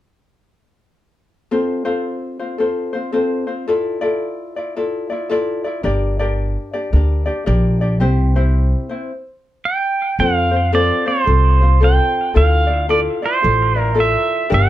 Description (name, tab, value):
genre	Hawaiian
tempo	111 BPM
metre	4/4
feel	swing 63% on 8ths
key	F major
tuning	A4 = 441 Hz
part	ukulele	accompaniment	1.5-14.7 s	C4 to D5	-20 LUFS	left 2 dB	none
part	upright bass	bass	5.8-14.7 s	G1 to F2	-15 LUFS	equal	none
part	pedal steel guitar	melody	9.7-14.7 s	C5 to G5	-17 LUFS	right 3 dB	ping-pong delay
room	moderate studio ambience, RT60 0.5 s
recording	dark, warm production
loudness	-15 LUFS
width	side -13 dB against mid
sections	1.5-10.2 A section; 10.2-14.7 B section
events	stop 9.1-10.2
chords	1.5 F; 3.7 Dmadd9; 5.9 Gm; 8.0 C; 10.2 F; 12.4 Dmadd9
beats	| 1.51 2.05 2.60 3.14 | 3.68 4.22 4.77 5.31 | 5.85 6.39 6.94 7.48 | 8.02 8.56 9.11 9.65 | 10.19 10.73 11.27 11.81 | 12.36 12.90 13.44 13.98 | 14.52